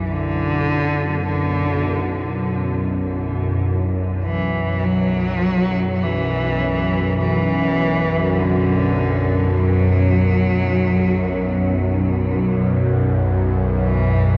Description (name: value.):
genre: dark ambient drone.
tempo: 50 BPM.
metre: 4/4.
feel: straight.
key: B harmonic minor.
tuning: A4 = 440 Hz.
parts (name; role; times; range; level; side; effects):
warm grand piano; arpeggios; 0.0-14.4 s; none; barely audible; none; none.
bowed-like drone; drone; 0.0-14.4 s; B1 to F#2; -21 LUFS; equal; built-in reverb, phaser.
bronze singing bowl; texture; 0.0-14.4 s; E4; -40 LUFS; equal; none.
rich cello; melody; 0.1-14.4 s; D3 to F#3; -24 LUFS; equal; diffuse ambient delay.
room: wet huge ambient reverb, RT60 7.9 s.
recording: worn, warbling old tape, cassette tape, warbly pitch drift.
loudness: -19 LUFS.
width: mono.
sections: 0.0-14.4 A section.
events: none.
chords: 0.0 Bm.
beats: | 0.10 1.28 2.46 3.64 | 4.83 6.02 7.20 8.39 | 9.59 10.78 11.98 13.20.